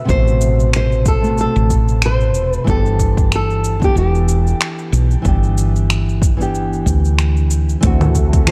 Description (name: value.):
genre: sunset chillout.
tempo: 93 BPM.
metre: 4/4.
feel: swing 56% on 16ths.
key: unclear.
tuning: A4 = 440 Hz.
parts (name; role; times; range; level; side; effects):
nylon-string guitar; melody; 0.0-8.5 s; G4 to C5; -23 LUFS; equal; tape echo, shimmer reverb.
nylon-string guitar; accompaniment; 0.0-8.5 s; B2 to G4; -24 LUFS; equal; tape echo, shimmer reverb.
woody fretless electric bass; bass; 0.1-8.5 s; E1 to D2; -18 LUFS; equal; subtle chorus.
deep house drum kit; drums; 0.1-8.5 s; cabasa, congas, finger snaps, hi-hat; -24 LUFS; equal; overdrive, studio ambience.
electronic kick drum; drums; 0.1-8.4 s; none; -19 LUFS; equal; overdrive, studio ambience.
soft string machine; sustained chords; 7.9-8.5 s; C3 to A4; -28 LUFS; equal; phaser, ensemble chorus.
room: light reverb, digital ambience.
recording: dark, warm production.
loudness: -15 LUFS.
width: mono.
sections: 0.0-7.8 A section.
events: none.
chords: 0.0 Am69; 2.7 G6; 7.8 D9.